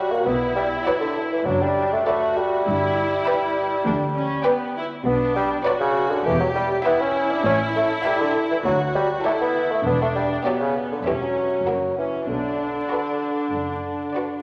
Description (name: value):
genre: cinematic, playful, whimsical film cue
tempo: 100 BPM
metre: 4/4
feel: straight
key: B minor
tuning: A4 = 439 Hz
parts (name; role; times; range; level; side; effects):
- rich studio violin section; melody; 0.0-14.4 s; C#5 to G5; -38 LUFS; equal; none
- rich studio violin section; second line; 0.0-14.4 s; F#4 to E5; -29 LUFS; equal; none
- mellow bassoon; accompaniment; 0.0-14.4 s; C#3 to D4; -24 LUFS; equal; none
- rich studio viola section; accompaniment; 0.0-14.4 s; A#3 to G4; -29 LUFS; equal; none
- rich studio double bass section; bass; 0.3-14.0 s; E1 to D2; -34 LUFS; equal; none
- warm studio cello section; bass; 0.3-14.0 s; D2 to B2; -33 LUFS; equal; none
room: wet scoring stage reverb, RT60 2.0 s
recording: vinyl crackle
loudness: -22 LUFS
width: mono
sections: 0.0-14.4 A section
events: none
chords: 0.3 Bm; 2.7 G; 5.1 Bm; 6.3 Em; 7.5 A5; 8.7 D; 9.9 Em7; 11.1 C#dim/E; 11.7 F#7; 12.3 Bm